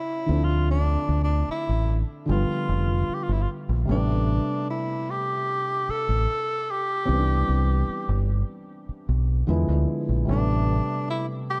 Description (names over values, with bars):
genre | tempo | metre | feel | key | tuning
contemporary R&B | 75 BPM | 4/4 | straight | unclear | A4 = 440 Hz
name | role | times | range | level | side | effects
breathy tenor saxophone | melody | 0.0-11.6 s | D4 to A4 | -30 LUFS | equal | none
felt-muted upright piano | accompaniment | 0.0-11.6 s | C3 to F4 | -31 LUFS | equal | none
deep dub fingered electric bass | bass | 0.3-10.8 s | F1 to E2 | -25 LUFS | equal | none
room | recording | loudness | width
light reverb, small room reverb | dark, warm production, lossy compression artefacts | -25 LUFS | mono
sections
0.0-3.9 A section; 3.9-11.6 B section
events
none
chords
0.3 Dm7; 2.3 G7; 3.9 Am11; 7.1 Cmaj9; 9.5 E7b9; 10.3 Am11